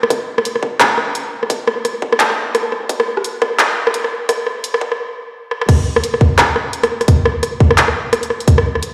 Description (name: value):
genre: drum and bass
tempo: 172 BPM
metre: 4/4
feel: swing 59% on 16ths, half-time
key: none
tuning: none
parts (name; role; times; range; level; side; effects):
- drum and bass drum kit; drums; 0.0-8.9 s; crash cymbal, handclaps, hi-hat, rim click; -18 LUFS; equal; overdrive
- electronic kick drum; drums; 0.1-8.6 s; none; -14 LUFS; equal; overdrive, high-pass filter on kick
room: wet echo chamber reverb, RT60 2.3 s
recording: played on a big sound system in a bare room, large studio reverb, high-pass filter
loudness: -16 LUFS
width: mono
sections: 0.0-5.7 A section; 5.7-8.9 B section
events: build-up 0.0-5.7; stop 5.0-5.7; drum fill 5.5; drop 5.7-8.9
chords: none